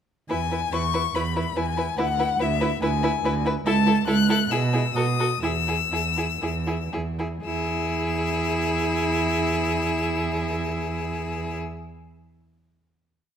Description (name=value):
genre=quick classical-period movement for string quartet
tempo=115-145 BPM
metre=4/4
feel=rubato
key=E major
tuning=A4 = 441 Hz
part: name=rich violin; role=melody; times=0.3-11.6 s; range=E5 to F#6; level=-27 LUFS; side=left 10 dB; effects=none
part: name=rich violin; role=second line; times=0.3-11.6 s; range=G#4 to B4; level=-29 LUFS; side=left 2 dB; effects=none
part: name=clear viola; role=accompaniment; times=0.3-11.6 s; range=E4 to F#4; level=-29 LUFS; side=right 3 dB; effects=none
part: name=dark cello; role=bass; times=0.3-11.6 s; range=C#2 to B2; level=-26 LUFS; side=right 3 dB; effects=none
room=moderate recital hall reverb, RT60 1.4 s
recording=none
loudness=-22 LUFS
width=side -8 dB against mid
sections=0.3-7.4 A section; 7.4-11.5 final chord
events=slowing down 2.8-7.4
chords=0.3 E; 2.0 E7/D; 3.7 A/C#; 4.5 E/B; 5.0 B7; 5.4 E